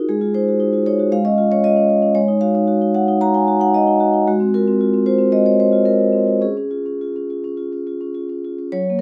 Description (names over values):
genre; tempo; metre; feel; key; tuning
classical, contemporary piece for solo vibraphone; 101-117 BPM; 4/4; rubato; unclear; A4 = 441 Hz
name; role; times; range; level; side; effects
vibraphone with medium mallets; solo; 0.0-9.0 s; F#3 to A#5; -17 LUFS; equal; none
room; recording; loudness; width
light reverb; none; -17 LUFS; mono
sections
0.0-8.7 A section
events
none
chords
0.1 G#6; 1.1 C#add9/G#; 2.2 G#13sus4; 4.3 G#69; 6.4 C#